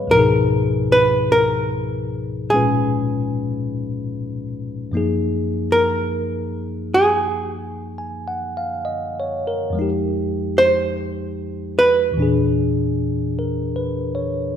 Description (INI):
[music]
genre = jazz ballad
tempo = 50 BPM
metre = 4/4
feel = swing 66% on 8ths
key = unclear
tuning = A4 = 441 Hz
[part]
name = bell-like tine electric piano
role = accompaniment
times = 0.0-14.6 s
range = Db2 to Ab5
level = -21 LUFS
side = left 2 dB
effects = none
[part]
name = archtop guitar, miked and amplified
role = melody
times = 0.1-14.1 s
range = Ab4 to C5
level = -17 LUFS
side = right 1 dB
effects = none
[sound]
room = moderate scoring stage reverb, RT60 1.7 s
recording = minimal, uncompressed stereo recording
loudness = -18 LUFS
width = side -9 dB against mid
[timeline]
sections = 0.0-14.6 A section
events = none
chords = 0.1 Db13; 4.9 Gbmaj13; 9.8 Fm9; 12.2 E7#11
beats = | 0.10 1.31 2.52 3.73 | 4.94 6.14 7.35 8.56 | 9.76 10.97 12.17 13.37